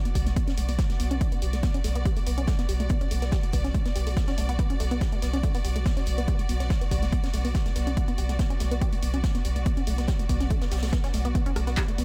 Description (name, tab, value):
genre	driving peak-time techno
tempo	142 BPM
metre	4/4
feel	straight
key	B minor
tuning	A4 = 440 Hz
part	clear symphonic string section	texture	0.0-12.0 s	B3 to D5	-39 LUFS	equal	sidechain pumping
part	tight sequenced synth	riff	0.1-12.0 s	A3 to G4	-36 LUFS	equal	chorus, tube saturation, vintage 12-bit sampler grit, sidechain pumping, dub echo
part	punchy analog drum machine	drums	0.1-12.0 s	handclaps, hi-hat, rim click	-41 LUFS	equal	overdrive, sidechain pumping on hats
part	saturated sub bass	bass	0.2-12.0 s	B1	-30 LUFS	equal	overdrive, sidechain pumping, low-pass filter
part	electronic kick drum	drums	0.2-11.9 s	none	-28 LUFS	equal	overdrive
part	swinging big-band drum kit	drums	0.2-12.0 s	hi-hat, snare drum	-48 LUFS	equal	none
room	small room ambience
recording	none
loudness	-26 LUFS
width	mono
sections	0.0-12.0 A section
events	filter sweep on synth arpeggio sound 0.0-12.0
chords	0.0 Bm